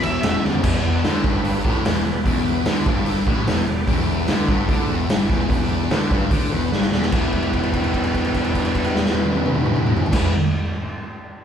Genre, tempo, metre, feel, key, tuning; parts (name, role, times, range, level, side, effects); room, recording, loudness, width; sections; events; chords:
blues rock power trio and southern rock; 148 BPM; 4/4; straight; E minor; A4 = 440 Hz
overdriven tonewheel organ; sustained chords; 0.0-10.3 s; B3 to D5; -30 LUFS; right 3 dB; slow rotary speaker
thick fuzz guitar; riff; 0.0-10.3 s; E2 to E4; -23 LUFS; left 2 dB; distortion
growling picked electric bass; bass; 0.0-10.3 s; E1 to D2; -27 LUFS; equal; overdrive
raw garage drum kit; drums; 0.0-10.2 s; crash cymbal, hi-hat, kick drum, ride cymbal, snare drum, toms; -20 LUFS; equal
moderate large studio reverb, RT60 1.2 s; band playing live in one room; -17 LUFS; side -8 dB against mid
0.6-7.1 A section; 7.1-10.4 B section
drum fill 0.4, 6.7-7.1; held note 7.1-10.1
0.0 Em